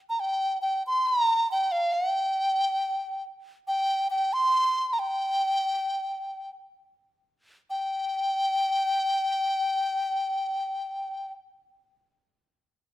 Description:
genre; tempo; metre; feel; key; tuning
chinese traditional; 47-70 BPM; 2/4; rubato; G yu mode; A4 = 435 Hz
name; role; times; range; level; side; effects
mellow hollow large dizi; solo; 0.1-11.3 s; F5 to C6; -24 LUFS; equal; none
room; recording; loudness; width
moderate recital hall reverb, RT60 1.3 s; close, detailed microphones; -24 LUFS; side -15 dB against mid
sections
0.0-7.7 A section; 7.7-12.6 B section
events
slowing down 3.7-7.7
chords
none

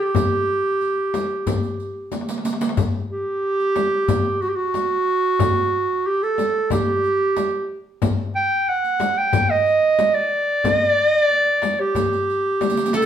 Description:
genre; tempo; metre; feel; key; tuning
Arabic maqam ensemble; 92 BPM; 4/4; straight; unclear; A4 = 439 Hz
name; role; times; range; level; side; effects
warm clarinet; melody; 0.0-13.1 s; F#4 to G5; -18 LUFS; right 2 dB; none
qanun; second line; 0.0-2.4, 12.9-13.1 s; G4 to A4; -30 LUFS; right 1 dB; none
frame drum; percussion; 0.1-12.8 s; none; -26 LUFS; left 6 dB; none
darbuka; percussion; 0.2-13.1 s; none; -26 LUFS; left 3 dB; none
riq; percussion; 0.2-13.1 s; none; -28 LUFS; right 3 dB; none
room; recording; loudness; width
wet large studio reverb, RT60 0.9 s; band playing live in one room; -18 LUFS; side -9 dB against mid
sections
0.0-2.8 A section; 2.8-13.1 B section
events
drum fill 2.1-2.8, 12.6-13.1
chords
none

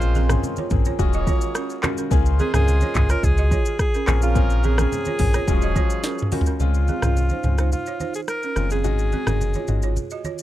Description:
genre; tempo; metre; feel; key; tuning
afrobeats; 107 BPM; 4/4; straight; Db major; A4 = 440 Hz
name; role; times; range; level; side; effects
breathy alto saxophone; melody; 0.0-10.4 s; F4 to Bb4; -28 LUFS; equal; none
clear horn section; second line; 0.0-6.3 s; F3 to Db5; -32 LUFS; right 3 dB; none
warm baby grand piano; accompaniment; 0.0-9.9 s; Gb3 to Ab4; -29 LUFS; left 17 dB; none
sub bass with octave; bass; 0.0-10.0 s; Eb1 to Db2; -20 LUFS; equal; none
afro-pop drum kit; drums; 0.0-10.4 s; handclaps, hi-hat, kick drum, rim click, shaker, snare drum, toms; -23 LUFS; equal; none
balafon; riff; 0.2-10.3 s; C4 to Eb5; -29 LUFS; right 10 dB; analog delay
congas; percussion; 0.2-10.4 s; none; -31 LUFS; right 2 dB; none
room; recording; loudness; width
little or no reverb; dark, warm production; -18 LUFS; side -14 dB against mid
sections
0.0-6.6 A section; 6.6-10.4 B section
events
drum fill 6.0-6.6; break 6.6-10.4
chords
0.0 Bbm9; 1.0 Ebm11; 2.1 Db6; 4.1 Bbm9; 5.5 Ebm11; 6.6 Dbmaj7

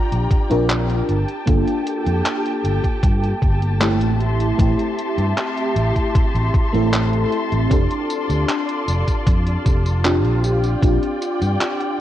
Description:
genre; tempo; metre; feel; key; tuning
vaporwave; 77 BPM; 4/4; straight; unclear; A4 = 441 Hz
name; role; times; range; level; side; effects
FM electric piano with soft pad layer; accompaniment; 0.0-12.0 s; A3 to Bb4; -22 LUFS; equal; tremolo, wide subtle chorus, cassette tape, analog delay
warm studio string section; sustained chords; 0.0-12.0 s; F4 to C6; -26 LUFS; left 1 dB; vintage 12-bit sampler grit
fingered electric bass; bass; 0.1-11.6 s; F1 to G2; -20 LUFS; equal; tube saturation
detuned 8-bit digital drum machine; drums; 0.1-12.0 s; handclaps, hi-hat, tambourine; -26 LUFS; equal; small room ambience
electronic kick drum; drums; 0.3-11.0 s; none; -18 LUFS; equal; small room ambience
room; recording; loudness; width
light reverb, digital ambience; cassette tape; -16 LUFS; side -12 dB against mid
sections
0.0-12.0 A section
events
none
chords
0.0 Bb6; 1.1 Gm9; 4.2 Am7; 7.7 F6; 10.4 Bb6

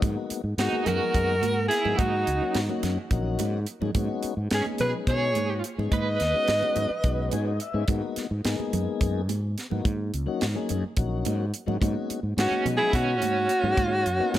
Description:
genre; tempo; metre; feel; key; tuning
electric jazz fusion; 214 BPM (eighths); 7/8; straight; G# minor; A4 = 440 Hz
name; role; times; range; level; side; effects
mellow tonewheel organ; accompaniment; 0.0-14.4 s; F#3 to G#5; -32 LUFS; left 7 dB; slow rotary speaker
mellow fretless electric bass; bass; 0.0-14.4 s; A#1 to B2; -28 LUFS; equal; none
tight funk drum kit; drums; 0.0-14.4 s; hi-hat, kick drum, snare drum; -29 LUFS; equal; none
congas; percussion; 0.0-14.4 s; none; -36 LUFS; right 10 dB; none
clear alto saxophone; melody; 0.6-7.6, 12.4-14.4 s; F#4 to D#5; -26 LUFS; equal; none
overdriven semi-hollow guitar; second line; 0.6-7.6, 12.4-14.4 s; C#4 to B4; -33 LUFS; right 6 dB; tremolo, analog delay
room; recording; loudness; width
light reverb, studio ambience; none; -23 LUFS; side -13 dB against mid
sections
0.0-14.4 A section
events
tonewheel organ fill 7.0-7.9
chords
0.0 G#m7; 2.0 D#m7; 4.0 C#7sus4/G#; 5.9 B69; 7.9 G#m7; 9.8 D#m7; 11.8 C#7sus4/G#; 13.8 G#m11

